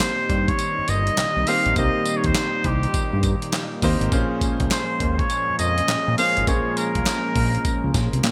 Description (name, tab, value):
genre	R&B, new jack swing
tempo	102 BPM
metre	4/4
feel	swing 64% on 16ths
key	unclear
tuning	A4 = 440 Hz
part	trumpet with straight mute	melody	0.0-7.9 s	G4 to F5	-26 LUFS	equal	none
part	clear concert grand piano	accompaniment	0.0-8.3 s	Bb3 to C5	-30 LUFS	equal	none
part	brassy analog pad	sustained chords	0.0-8.3 s	Bb2 to Eb4	-32 LUFS	equal	chorus
part	dusty soul sampler-style drum kit	drums	0.0-8.3 s	handclaps, hi-hat, kick drum, snare drum, tambourine	-27 LUFS	equal	gated reverb
part	group handclap	percussion	0.0-8.3 s	none	barely audible	none	none
part	fat analog bass	bass	0.3-8.3 s	G1 to Bb2	-26 LUFS	equal	none
room	light reverb, digital ambience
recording	bright 1980s-style digital production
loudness	-21 LUFS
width	mono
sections	0.0-8.3 A section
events	none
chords	0.0 Cm7; 4.1 Bbm9